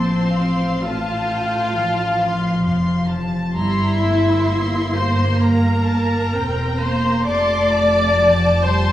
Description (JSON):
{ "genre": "classical, slow romantic movement for string orchestra", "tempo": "59-68 BPM", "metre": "4/4", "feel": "rubato", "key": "F major", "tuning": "A4 = 439 Hz", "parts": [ { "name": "rich symphonic violin section", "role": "melody", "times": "0.0-8.9 s", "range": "C5 to D6", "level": "-27 LUFS", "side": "left 2 dB", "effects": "none" }, { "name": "rich chamber violin section", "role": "second line", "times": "0.0-8.9 s", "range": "F5 to C6", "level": "-27 LUFS", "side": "left 1 dB", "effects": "none" }, { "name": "rich chamber viola section", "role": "accompaniment", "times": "0.0-8.9 s", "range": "C4 to D5", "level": "-20 LUFS", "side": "left 1 dB", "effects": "none" }, { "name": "rich chamber double bass section", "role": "bass", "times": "0.0-8.9 s", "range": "E1 to A1", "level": "-22 LUFS", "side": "right 1 dB", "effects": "none" }, { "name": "warm studio cello section", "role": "bass", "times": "0.0-8.9 s", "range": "F3 to C4", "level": "-22 LUFS", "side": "equal", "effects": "none" } ], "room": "wet recital hall reverb, RT60 1.5 s", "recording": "small room ambience", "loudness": "-16 LUFS", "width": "side -13 dB against mid", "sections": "0.0-8.9 A section", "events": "none", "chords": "0.0 F/A; 3.6 C7/G; 7.3 F", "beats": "0.83 1.78 2.67 | 3.57 4.49 5.41 6.33 | 7.25 8.17" }